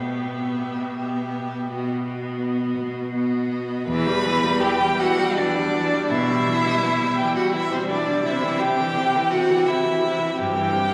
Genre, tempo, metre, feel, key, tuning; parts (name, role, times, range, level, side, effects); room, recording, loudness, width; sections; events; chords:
classical, slow romantic movement for string quartet; 56 BPM (dotted quarters); 12/8; rubato; E minor; A4 = 440 Hz
rich violin; melody; 0.0-10.9 s; C5 to B5; -29 LUFS; equal
rich violin; second line; 0.0-10.9 s; C4 to B4; -26 LUFS; equal
rich viola; accompaniment; 0.0-10.9 s; C3 to B3; -28 LUFS; equal
rich cello; bass; 0.0-10.9 s; E2 to C3; -30 LUFS; equal
wet cathedral reverb, RT60 4.1 s; recorded in a church or concert hall, studio ambience, faint mains hum; -22 LUFS; mono
0.0-3.9 A section; 3.9-10.9 B section
0.0 Em/B; 3.9 Em; 8.3 C